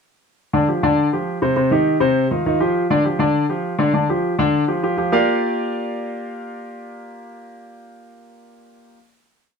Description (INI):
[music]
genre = jazz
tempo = 202 BPM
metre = 4/4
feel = straight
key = Bb major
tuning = A4 = 441 Hz
[part]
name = warm grand piano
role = solo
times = 0.5-9.0 s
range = C3 to F5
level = -17 LUFS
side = equal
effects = none
[sound]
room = moderate studio reverb, RT60 0.5 s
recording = close, detailed microphones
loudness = -16 LUFS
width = side -5 dB against mid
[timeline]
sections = 0.4-5.1 A section; 5.1-7.5 final chord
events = none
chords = 0.4 Csus24; 1.6 Cm; 2.2 F5; 2.8 Dmadd11; 5.1 Bb6